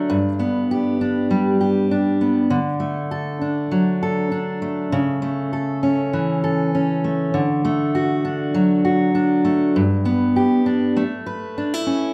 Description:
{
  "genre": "pop",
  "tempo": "99 BPM",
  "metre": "4/4",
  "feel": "swing 55% on 16ths",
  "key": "D major",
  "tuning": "A4 = 439 Hz",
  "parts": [
    { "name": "fingerpicked steel-string acoustic guitar", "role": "solo", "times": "0.0-12.1 s", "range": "G2 to B4", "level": "-20 LUFS", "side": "equal", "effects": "none" }
  ],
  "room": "wet recital hall reverb, RT60 1.7 s",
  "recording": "recorded in a church or concert hall",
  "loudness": "-20 LUFS",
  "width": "mono",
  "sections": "0.0-12.1 A section",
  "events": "none",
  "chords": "0.1 G; 2.5 D; 4.9 A/C#; 7.3 D; 9.8 G; 11.0 Aadd9"
}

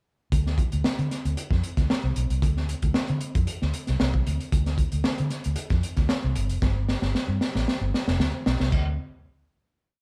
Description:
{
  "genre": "funk",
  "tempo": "114 BPM",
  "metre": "4/4",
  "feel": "straight",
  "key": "D dorian",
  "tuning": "A4 = 440 Hz",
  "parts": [
    { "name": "vintage muted fingered electric bass", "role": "bass", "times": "0.3-9.0 s", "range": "F1 to D3", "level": "-28 LUFS", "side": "equal", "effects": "none" },
    { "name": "crunchy breakbeat drum kit", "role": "drums", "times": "0.3-8.9 s", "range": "china cymbal, hi-hat, kick drum, snare drum", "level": "-28 LUFS", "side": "equal", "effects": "none" }
  ],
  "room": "light reverb",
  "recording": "band playing live in one room",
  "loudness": "-26 LUFS",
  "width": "mono",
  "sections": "0.3-8.7 breakdown; 8.7-10.0 final chord",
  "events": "drum fill 6.6-8.7",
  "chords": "none"
}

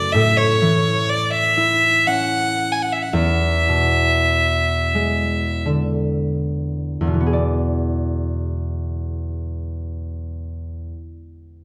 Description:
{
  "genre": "celtic folk, Celtic slow air",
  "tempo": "38-64 BPM",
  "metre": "3/4",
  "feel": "rubato",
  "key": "E mixolydian",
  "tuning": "A4 = 440 Hz",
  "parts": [
    { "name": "clear fiddle", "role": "melody", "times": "0.0-5.7 s", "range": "C#5 to G#5", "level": "-20 LUFS", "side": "equal", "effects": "none" },
    { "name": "concert harp", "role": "accompaniment", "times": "0.0-11.0 s", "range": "E2 to D5", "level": "-23 LUFS", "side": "equal", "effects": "none" }
  ],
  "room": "wet recital hall reverb, RT60 1.3 s",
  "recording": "faint mains hum",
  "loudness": "-19 LUFS",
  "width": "mono",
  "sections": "0.0-7.2 A section; 7.2-11.6 B section",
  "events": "slowing down 0.1-7.2",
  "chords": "0.1 A; 3.1 E7"
}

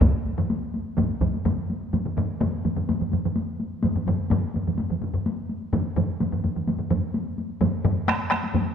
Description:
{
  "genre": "japanese traditional, taiko drum ensemble",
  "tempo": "127 BPM",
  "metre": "4/4",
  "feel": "straight",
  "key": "none",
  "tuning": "none",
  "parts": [
    { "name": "solo taiko drums", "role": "percussion", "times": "0.0-8.7 s", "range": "none", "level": "-28 LUFS", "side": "left 3 dB", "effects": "none" },
    { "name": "taiko ensemble", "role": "percussion", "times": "0.0-8.7 s", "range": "none", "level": "-27 LUFS", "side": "left 2 dB", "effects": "none" },
    { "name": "taiko ensemble", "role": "percussion", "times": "0.0-8.7 s", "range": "none", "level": "-29 LUFS", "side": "right 7 dB", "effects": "none" },
    { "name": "taiko ensemble", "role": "percussion", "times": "0.0-1.3 s", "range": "none", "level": "-26 LUFS", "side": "right 1 dB", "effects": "none" }
  ],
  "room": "wet scoring stage reverb, RT60 1.9 s",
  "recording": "minimal, uncompressed stereo recording",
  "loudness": "-23 LUFS",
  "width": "side -8 dB against mid",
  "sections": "0.0-1.9 A section; 1.9-8.7 B section",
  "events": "none",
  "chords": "none"
}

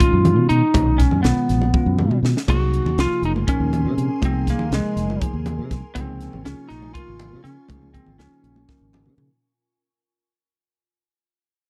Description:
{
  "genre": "electric jazz fusion",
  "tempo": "242 BPM (eighths)",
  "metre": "7/8",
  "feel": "straight",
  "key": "Db major",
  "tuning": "A4 = 440 Hz",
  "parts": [
    { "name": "lightly driven lead guitar", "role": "melody", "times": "0.0-9.1 s", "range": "Ab3 to Gb4", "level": "-25 LUFS", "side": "equal", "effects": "none" },
    { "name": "bell-like tine electric piano", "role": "accompaniment", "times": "0.0-9.3 s", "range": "Bb2 to Bb4", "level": "-30 LUFS", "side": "equal", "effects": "analog chorus" },
    { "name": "crisp fusion drum kit", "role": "drums", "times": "0.0-9.3 s", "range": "crash cymbal, hi-hat, kick drum, snare drum, toms", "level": "-25 LUFS", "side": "equal", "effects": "none" },
    { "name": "fingered electric bass", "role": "bass", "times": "0.1-9.3 s", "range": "Gb1 to Db3", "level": "-24 LUFS", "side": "equal", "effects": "none" },
    { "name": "congas", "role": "percussion", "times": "0.2-9.4 s", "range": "none", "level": "-29 LUFS", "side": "equal", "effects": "none" },
    { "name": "evolving wavetable pad", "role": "sustained chords", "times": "2.9-9.4 s", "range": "F4 to Db6", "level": "-42 LUFS", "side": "equal", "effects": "chorus, built-in reverb" }
  ],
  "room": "small room reverb",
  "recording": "dry, close 1970s-style studio recording",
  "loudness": "-20 LUFS",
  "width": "mono",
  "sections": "0.0-9.4 A section",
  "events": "fade-out 0.0-9.4; drum fill 1.7-2.5, 8.7-9.4",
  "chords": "0.0 Cbmaj9; 2.5 Ab9; 6.0 Db6"
}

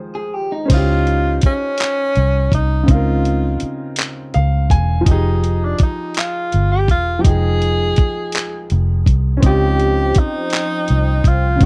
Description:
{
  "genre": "slow six-eight R&B",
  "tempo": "55 BPM (dotted quarters)",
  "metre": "6/8",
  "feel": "straight",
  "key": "unclear",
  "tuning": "A4 = 440 Hz",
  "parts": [
    { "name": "clear grand piano", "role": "accompaniment", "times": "0.0-11.7 s", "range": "Db3 to Ab5", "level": "-25 LUFS", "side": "equal", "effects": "none" },
    { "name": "hollow soft pad", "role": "sustained chords", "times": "0.0-0.7, 9.4-11.7 s", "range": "Eb3 to G5", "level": "-32 LUFS", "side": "equal", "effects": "chorus" },
    { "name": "electric guitar at the edge of break-up", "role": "second line", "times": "0.1-0.9 s", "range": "Eb4 to Ab4", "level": "-26 LUFS", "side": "equal", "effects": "none" },
    { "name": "warm tenor saxophone", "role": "melody", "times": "0.7-11.7 s", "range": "Db4 to Ab4", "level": "-23 LUFS", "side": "equal", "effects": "none" },
    { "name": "vintage muted fingered electric bass", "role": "bass", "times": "0.7-11.7 s", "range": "Fb1 to Db2", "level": "-18 LUFS", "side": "equal", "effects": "none" },
    { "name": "dusty soul sampler-style drum kit", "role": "drums", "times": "0.7-11.7 s", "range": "crash cymbal, handclaps, hi-hat, kick drum", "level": "-17 LUFS", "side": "equal", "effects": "none" }
  ],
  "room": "little or no reverb",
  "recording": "dry, close 1970s-style studio recording",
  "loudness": "-17 LUFS",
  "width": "mono",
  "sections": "0.7-11.7 A section",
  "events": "break 0.0-0.7; grand piano fill 4.0-5.1",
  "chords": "0.0 Fm9; 0.7 Dbmaj9#11; 5.1 Fm9; 9.4 Dbmaj9#11"
}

